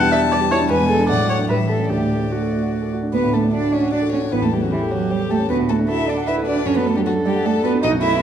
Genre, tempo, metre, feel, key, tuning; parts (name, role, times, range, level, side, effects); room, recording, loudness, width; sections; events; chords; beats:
quick classical-period movement for piano quartet; 153 BPM; 3/4; straight; D major; A4 = 440 Hz
warm violin; melody; 0.0-8.2 s; E4 to A5; -24 LUFS; left 9 dB
warm cello; second line; 0.0-8.2 s; E3 to E4; -21 LUFS; right 5 dB
warm grand piano; accompaniment; 0.0-8.2 s; A1 to G5; -22 LUFS; left 1 dB
warm viola; accompaniment; 0.0-8.2 s; D4 to F#5; -24 LUFS; right 1 dB
wet recital hall reverb, RT60 1.3 s; dark, warm production; -16 LUFS; side -9 dB against mid
0.0-3.1 A section; 3.1-8.2 A section
0.0 Em7; 0.7 E7; 1.1 D/A; 1.5 A7; 1.9 D; 4.3 A7; 5.5 D; 6.7 D/F#
0.32 | 0.71 1.10 1.50 | 1.91 2.32 2.73 | 3.13 3.53 3.93 | 4.32 4.72 5.11 | 5.50 5.89 6.27 | 6.66 7.05 7.45 | 7.83